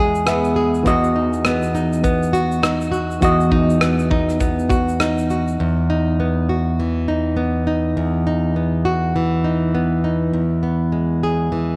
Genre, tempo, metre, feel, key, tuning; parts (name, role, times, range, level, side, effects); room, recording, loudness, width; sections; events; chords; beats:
acoustic pop; 101 BPM; 4/4; swing 60% on 16ths; A4 = 439 Hz
barky reed electric piano; accompaniment; 0.0-5.6 s; E3 to E5; -24 LUFS; equal; overdrive, fast tremolo
nylon-string guitar; accompaniment; 0.0-11.8 s; E2 to G#4; -20 LUFS; equal
loose indie drum kit; drums; 0.2-5.6 s; kick drum, rim click, shaker; -25 LUFS; equal
wet echo chamber reverb, RT60 2.2 s; -19 LUFS; mono
0.0-5.6 A section; 5.6-10.3 B section; 10.3-11.8 C section
0.0 E; 0.9 B/E; 10.3 E
0.27 | 0.86 1.45 2.04 2.63 | 3.23 3.82 4.41 5.00 | 5.59 6.18 6.78 7.37 | 7.96 8.55 9.15 9.74 | 10.33 10.93 11.52